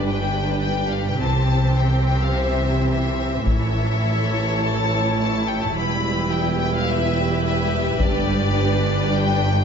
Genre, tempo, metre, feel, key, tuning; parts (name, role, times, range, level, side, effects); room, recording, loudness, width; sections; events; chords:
cinematic, epic orchestral film score; 106 BPM; 4/4; straight; G major; A4 = 441 Hz
bright symphonic violin section; melody; 0.0-9.6 s; D5 to B5; -26 LUFS; left 6 dB
rich symphonic violin section; second line; 0.0-9.6 s; G4 to C#5; -27 LUFS; left 3 dB
rich symphonic viola section; accompaniment; 0.0-9.6 s; E3 to E4; -26 LUFS; right 2 dB
clear symphonic double bass section; bass; 0.0-9.6 s; E1 to C2; -23 LUFS; right 2 dB
rich symphonic cello section; bass; 0.0-9.6 s; E2 to C3; -25 LUFS; right 2 dB
taiko ensemble; drums; 3.5-4.6, 8.0-9.1 s; -24 LUFS; left 2 dB
moderate scoring stage reverb, RT60 1.5 s; nothing above 7.6 kHz; -18 LUFS; side -7 dB against mid
0.0-9.6 A section
0.0 G; 1.2 C; 3.5 A; 5.7 Em; 8.0 G